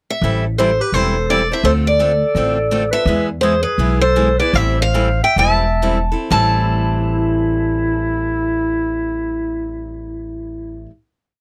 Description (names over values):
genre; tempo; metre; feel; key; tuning
acoustic string swing (jazz manouche); 118-169 BPM; 4/4; swing 62% on 8ths; A minor; A4 = 440 Hz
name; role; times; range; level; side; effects
picked steel-string acoustic guitar; melody; 0.1-10.9 s; B4 to A5; -20 LUFS; equal; none
picked steel-string acoustic guitar; accompaniment; 0.2-10.9 s; A2 to A4; -25 LUFS; equal; none
upright bass; bass; 0.2-10.8 s; E1 to E2; -22 LUFS; equal; none
breathy clarinet; second line; 0.6-10.9 s; E4 to E5; -24 LUFS; equal; none
room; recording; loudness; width
light reverb; dry, close 1970s-style studio recording; -17 LUFS; mono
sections
0.0-0.2 pickup bar; 0.2-6.3 A section; 6.3-10.4 final chord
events
slowing down 3.1-6.3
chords
0.2 Am7; 1.6 Dm7; 3.1 E; 4.5 Am7